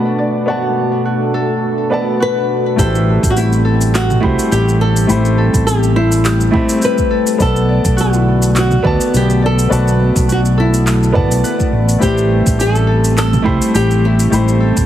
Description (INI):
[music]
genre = sunset chillout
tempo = 104 BPM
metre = 4/4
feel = swing 55% on 16ths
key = A dorian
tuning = A4 = 442 Hz
[part]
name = warm grand piano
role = accompaniment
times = 0.0-14.9 s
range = A3 to B5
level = -19 LUFS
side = moving between left 4 dB and right 4 dB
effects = auto-pan, ping-pong delay
[part]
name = airy breathy pad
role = sustained chords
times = 0.0-14.9 s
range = B2 to B5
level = -20 LUFS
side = left 1 dB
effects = chorus
[part]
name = Celtic harp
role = arpeggios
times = 0.0-14.9 s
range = F#4 to D5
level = -23 LUFS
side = right 1 dB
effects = ping-pong delay
[part]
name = flamenco guitar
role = melody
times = 2.2-14.9 s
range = E4 to B4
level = -19 LUFS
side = left 1 dB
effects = ping-pong delay
[part]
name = mellow fretless electric bass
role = bass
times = 2.8-14.9 s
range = F#1 to D2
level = -14 LUFS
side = equal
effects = none
[part]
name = deep house drum kit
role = drums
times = 2.8-14.9 s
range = handclaps, hi-hat, shaker, toms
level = -22 LUFS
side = equal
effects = small room ambience
[part]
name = electronic kick drum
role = drums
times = 2.8-14.9 s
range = none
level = -18 LUFS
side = equal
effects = small room ambience
[sound]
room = light reverb, digital ambience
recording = heavily compressed radio sound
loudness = -11 LUFS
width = side -11 dB against mid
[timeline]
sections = 0.0-2.8 A section; 2.8-14.9 B section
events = none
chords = 0.0 Bm7; 2.8 Am9; 7.4 Bm7; 12.0 Am9